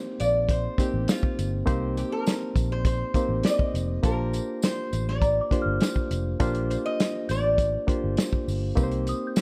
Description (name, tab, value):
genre	lush 1970s-style soul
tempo	101 BPM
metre	4/4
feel	straight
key	Bb major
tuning	A4 = 438 Hz
part	bright reed electric piano	accompaniment	0.0-9.4 s	Bb3 to C5	-32 LUFS	equal	overdrive
part	lap resonator guitar	melody	0.2-8.4 s	F4 to Eb5	-31 LUFS	equal	none
part	vintage muted fingered electric bass	bass	0.2-9.1 s	F1 to C2	-31 LUFS	equal	none
part	warm soul drum kit	drums	0.2-9.4 s	hi-hat, kick drum, snare drum	-28 LUFS	equal	none
part	tambourine	percussion	0.2-9.4 s	none	-45 LUFS	equal	none
part	small celesta	texture	0.2-9.4 s	F5 to G6	-40 LUFS	equal	none
room	light reverb, small room ambience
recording	dark, warm production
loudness	-26 LUFS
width	mono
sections	0.0-9.4 A section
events	none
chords	0.0 Cm7; 4.0 Bb69; 8.8 Cm7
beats	0.48 1.08 | 1.67 2.26 2.85 3.44 | 4.04 4.63 5.22 5.81 | 6.40 7.00 7.59 8.18 | 8.77 9.36